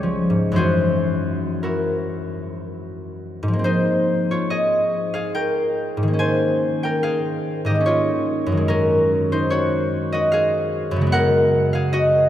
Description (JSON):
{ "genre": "classical, solo harp piece", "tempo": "55-76 BPM", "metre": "3/4", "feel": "rubato", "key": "Ab major", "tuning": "A4 = 441 Hz", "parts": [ { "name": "concert harp", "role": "solo", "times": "0.0-12.3 s", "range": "Db2 to C6", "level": "-18 LUFS", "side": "equal", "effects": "none" } ], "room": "wet cathedral reverb, RT60 5.2 s", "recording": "in a vast, echoing space", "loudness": "-18 LUFS", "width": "side -11 dB against mid", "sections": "0.0-3.6 A section; 3.6-12.3 B section", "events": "none", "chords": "0.0 Dbmaj7#11; 0.6 Gb9; 3.6 Ab69; 6.2 Bbm11/Ab; 8.7 Gb69; 11.1 Abm11/Gb", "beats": "| 0.56 1.64 2.66 | 3.64 4.51 5.35 | 6.19 7.04 7.87 | 8.69 9.50 10.32 | 11.11 11.91" }